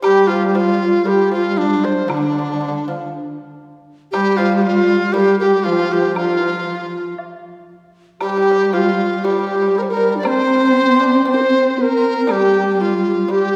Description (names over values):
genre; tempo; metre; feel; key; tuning
chinese traditional, Chinese chamber ensemble; 59 BPM; 2/4; straight; unclear; A4 = 440 Hz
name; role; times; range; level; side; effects
large dizi; melody; 0.0-13.6 s; D4 to D5; -19 LUFS; equal; none
bright low xiao; second line; 0.0-13.6 s; C4 to C5; -23 LUFS; equal; none
dark cello; second line; 0.0-13.6 s; D3 to C4; -22 LUFS; equal; none
pipa; second line; 0.0-13.6 s; D3 to D4; -28 LUFS; equal; none
woodblock; percussion; 0.0-12.5 s; none; -33 LUFS; equal; none
room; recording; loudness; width
wet concert hall reverb, RT60 2.1 s; heard from further back in the room; -16 LUFS; mono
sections
0.0-13.6 A section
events
none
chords
none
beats
| 0.04 1.07 | 2.10 3.12 | 4.14 5.16 | 6.17 7.19 | 8.21 9.24 | 10.26 11.28 | 12.30 13.31